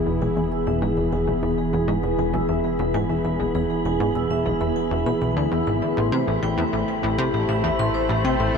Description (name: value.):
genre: ambient, sequencer-driven space music.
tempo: 99 BPM.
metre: 4/4.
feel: straight.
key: unclear.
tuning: A4 = 440 Hz.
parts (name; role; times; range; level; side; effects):
sweeping resonant pad; sustained chords; 0.0-8.6 s; E3 to C5; -23 LUFS; right 1 dB; chorus.
round analog bass; bass; 0.0-8.6 s; E1 to A1; -34 LUFS; left 1 dB; none.
wind-like tuned noise texture; texture; 0.0-8.6 s; B5; -35 LUFS; right 1 dB; built-in reverb.
vibraphone with medium hard mallets; arpeggios; 0.1-8.6 s; G4 to E6; -30 LUFS; moving between left 6 dB and right 1 dB; auto-pan, tape echo.
plucky analog bass; riff; 0.1-8.6 s; E1 to C3; -24 LUFS; left 1 dB; lush chorus, tape echo.
room: wet huge ambient reverb, RT60 7.3 s.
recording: in a vast, echoing space.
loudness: -20 LUFS.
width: side -6 dB against mid.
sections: 0.0-8.6 A section.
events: fade-in on vibraphone 0.0-8.6; fade-in on synth texture 0.0-8.6.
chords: 0.0 E; 6.0 Am7.